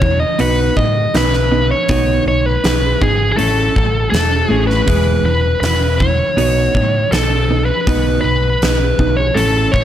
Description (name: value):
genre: quiet-loud alternative rock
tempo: 80 BPM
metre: 4/4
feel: straight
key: B mixolydian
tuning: A4 = 437 Hz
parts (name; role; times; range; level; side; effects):
- biting lead guitar; melody; 0.0-9.8 s; G#4 to D#5; -17 LUFS; left 1 dB; overdrive, slapback echo
- twelve-string electric guitar; arpeggios; 0.0-9.8 s; E2 to F#4; -20 LUFS; right 3 dB; slapback echo
- overdriven picked electric bass; bass; 0.0-9.8 s; E1 to A2; -17 LUFS; equal; none
- huge arena drum kit; drums; 0.0-9.8 s; hi-hat, kick drum, snare drum; -19 LUFS; equal; none
room: small room ambience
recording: none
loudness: -12 LUFS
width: side -10 dB against mid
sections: 0.0-9.8 A section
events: none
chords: 0.4 B; 3.4 A; 4.9 E; 6.4 Badd9; 7.9 B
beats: 0.40 1.14 | 1.89 2.64 3.38 4.13 | 4.88 5.63 6.37 7.12 | 7.87 8.62 9.37